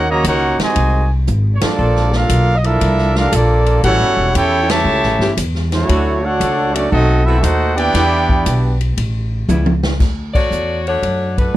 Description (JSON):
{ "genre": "jazz, big band swing", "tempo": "117 BPM", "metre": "4/4", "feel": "swing 67% on 8ths", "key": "D major", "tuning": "A4 = 440 Hz", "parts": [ { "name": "warm trumpet section", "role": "melody", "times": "0.0-8.8 s", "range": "A3 to Bb5", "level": "-17 LUFS", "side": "equal", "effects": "none" }, { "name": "clear trombone section", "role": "second line", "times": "0.0-8.8 s", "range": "C3 to A4", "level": "-20 LUFS", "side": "right 2 dB", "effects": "none" }, { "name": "upright bass", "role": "bass", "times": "0.0-11.6 s", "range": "E1 to F#2", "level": "-16 LUFS", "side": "equal", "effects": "none" }, { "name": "swinging big-band drum kit", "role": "drums", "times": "0.2-11.5 s", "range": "crash cymbal, hi-hat, kick drum, ride cymbal, snare drum, toms", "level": "-21 LUFS", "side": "equal", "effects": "none" }, { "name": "clear saxophone section", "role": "sustained chords", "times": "1.8-9.7 s", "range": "C3 to A4", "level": "-23 LUFS", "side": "left 2 dB", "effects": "none" }, { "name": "bright saxophone section", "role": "melody", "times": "10.3-11.6 s", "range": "A3 to D5", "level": "-18 LUFS", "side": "left 2 dB", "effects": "none" } ], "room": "studio ambience", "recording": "none", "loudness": "-13 LUFS", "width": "side -14 dB against mid", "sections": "0.0-10.0 A section; 10.0-11.6 B section", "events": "drum fill 1.3-1.8, 9.5-10.0; band accent 1.5, 4.6, 10.3", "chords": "0.0 Ebm7; 0.8 G#7; 1.8 Bbmaj7; 3.8 A7; 5.9 Dmaj7; 6.9 B7b9; 7.9 Em7; 9.0 A9; 10.0 Dmaj7" }